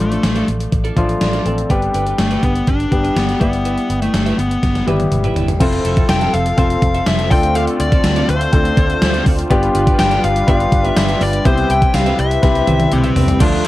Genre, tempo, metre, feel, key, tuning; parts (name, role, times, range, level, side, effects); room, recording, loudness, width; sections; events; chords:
1980s-style pop; 123 BPM; 4/4; straight; D dorian; A4 = 440 Hz
fuzz lead guitar; melody; 0.0-13.7 s; A3 to G5; -19 LUFS; left 2 dB; distortion
warm grand piano; accompaniment; 0.0-13.7 s; D3 to D5; -20 LUFS; left 2 dB
twelve-string electric guitar; riff; 0.0-13.7 s; B3 to F5; -27 LUFS; right 5 dB; analog chorus
vintage muted fingered electric bass; bass; 0.0-13.6 s; F1 to D2; -20 LUFS; equal
gated 80s digital drum machine; drums; 0.1-13.7 s; crash cymbal, hi-hat, kick drum, snare drum, tambourine, toms; -17 LUFS; equal; gated reverb, gated reverb snare, overdrive
brassy analog pad; sustained chords; 5.6-13.7 s; C3 to A5; -22 LUFS; right 1 dB; chorus
crunchy overdriven guitar; accompaniment; 13.4-13.7 s; D3 to D4; -24 LUFS; right 6 dB; wide subtle chorus
light reverb, digital ambience; vinyl crackle; -13 LUFS; side -16 dB against mid
0.0-5.6 A section; 5.6-13.4 B section
drum fill 4.6-5.6, 12.4-13.4
0.0 Dm/A; 1.7 G; 3.4 Em/G; 5.6 Fmaj7; 7.3 Dm7; 9.5 G7; 11.5 Cmaj7